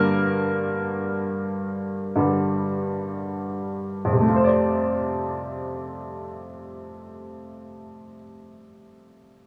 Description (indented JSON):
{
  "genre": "pop",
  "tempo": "free time",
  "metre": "none",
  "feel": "none",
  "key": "F major",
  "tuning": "A4 = 440 Hz",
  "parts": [
    { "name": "clear upright piano", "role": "accompaniment", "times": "0.0-9.5 s", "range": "F2 to D5", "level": "-26 LUFS", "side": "equal", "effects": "none" }
  ],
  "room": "wet studio reverb, RT60 0.6 s",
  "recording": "band playing live in one room, studio ambience",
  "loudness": "-25 LUFS",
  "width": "mono",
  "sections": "0.0-4.2 A section; 4.2-8.5 B section",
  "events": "slowing down 0.0-4.2; upright piano solo 0.0-4.2",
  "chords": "0.0 Gm; 4.2 F6"
}